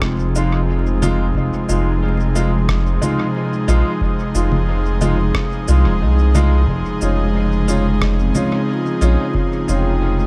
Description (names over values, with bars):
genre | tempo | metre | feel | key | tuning
ambient dub | 90 BPM | 4/4 | straight | F minor | A4 = 440 Hz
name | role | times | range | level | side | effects
airy breathy pad | sustained chords | 0.0-10.3 s | C3 to Ab4 | -24 LUFS | equal | chorus
vibraphone with soft mallets | arpeggios | 0.0-10.3 s | Ab3 to G5 | -28 LUFS | equal | dub echo
soft dub sub bass | bass | 0.0-10.3 s | Eb1 to C2 | -19 LUFS | equal | none
electronic kick drum | drums | 0.0-9.5 s | none | -27 LUFS | equal | studio reverb
electronic rim click, cabasa and congas | drums | 0.0-9.8 s | none | -28 LUFS | equal | studio reverb, dub echo
warm upright piano | stabs | 0.4-9.9 s | Ab3 to F4 | -27 LUFS | equal | dub echo
room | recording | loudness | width
light reverb | echo-heavy mix, vinyl crackle | -17 LUFS | mono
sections
0.0-10.3 A section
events
none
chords
0.0 Fm7; 6.7 Dbadd9/F